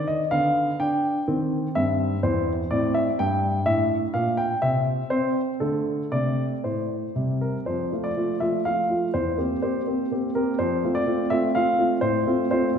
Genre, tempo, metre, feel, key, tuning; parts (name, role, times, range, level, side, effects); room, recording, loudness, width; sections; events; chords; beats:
classical-period piano sonatina; 125 BPM; 3/4; rubato; F major; A4 = 440 Hz
warm baby grand piano; solo; 0.0-12.8 s; E2 to G5; -21 LUFS; equal
wet scoring stage reverb, RT60 1.6 s; recorded in a church or concert hall; -22 LUFS; side -7 dB against mid
0.0-7.7 A section; 7.7-12.8 B section
0.3 G7/D; 1.3 Cm/Eb; 1.8 C/G; 2.7 Amadd11; 3.2 Gm; 4.6 N.C.; 5.6 D5; 6.1 Amadd11; 7.2 C5; 7.7 F; 9.1 C7/E; 10.6 F; 12.0 F/A
| 0.32 0.80 1.27 | 1.75 2.23 2.71 | 3.19 3.66 4.14 | 4.62 5.10 5.60 | 6.12 6.64 7.16 | 7.67 8.16 8.65 | 9.14 9.62 10.11 | 10.60 11.08 11.56 | 12.03 12.51